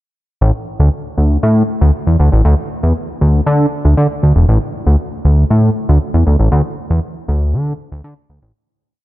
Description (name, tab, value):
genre	funk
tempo	118 BPM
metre	4/4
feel	straight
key	unclear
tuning	A4 = 440 Hz
part	fat analog bass	solo	0.4-8.5 s	E1 to D3	-11 LUFS	equal	none
room	light reverb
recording	dark, warm production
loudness	-11 LUFS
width	side -16 dB against mid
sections	0.4-8.6 breakdown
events	fade-out 6.5-8.6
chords	none